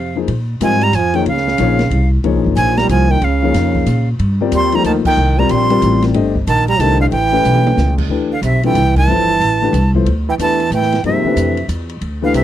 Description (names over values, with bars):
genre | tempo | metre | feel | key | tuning
modal jazz | 184 BPM | 3/4 | swing 63% on 8ths | Bb dorian, D dorian from 8.1 s | A4 = 440 Hz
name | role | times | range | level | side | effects
breathy bright jazz flute | melody | 0.0-12.4 s | E5 to C6 | -17 LUFS | right 1 dB | none
clear trombone | second line | 0.0-12.4 s | C3 to G3 | -20 LUFS | right 9 dB | none
upright bass | bass | 0.0-12.4 s | G1 to Bb2 | -16 LUFS | equal | none
warm concert grand piano | accompaniment | 0.2-12.4 s | D3 to Eb5 | -18 LUFS | left 8 dB | none
open jazz drum kit | drums | 0.3-12.4 s | crash cymbal, hi-hat, kick drum, ride cymbal, snare drum, toms | -26 LUFS | equal | none
room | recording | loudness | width
little or no reverb | dry, close 1970s-style studio recording | -12 LUFS | side -11 dB against mid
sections
0.3-8.1 A section; 8.1-12.4 B section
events
band accent 5.0, 8.9; drum fill 7.5-7.8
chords
0.3 Bbm9; 4.2 Cm9; 7.1 A7; 8.1 D9sus4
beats
| 0.29 0.62 0.94 | 1.27 1.59 1.92 | 2.24 2.57 2.89 | 3.22 3.54 3.87 | 4.20 4.52 4.85 | 5.17 5.50 5.83 | 6.15 6.48 6.80 | 7.13 7.46 7.78 | 8.11 8.43 8.76 | 9.09 9.41 9.74 | 10.07 10.39 10.72 | 11.05 11.37 11.70 | 12.03 12.35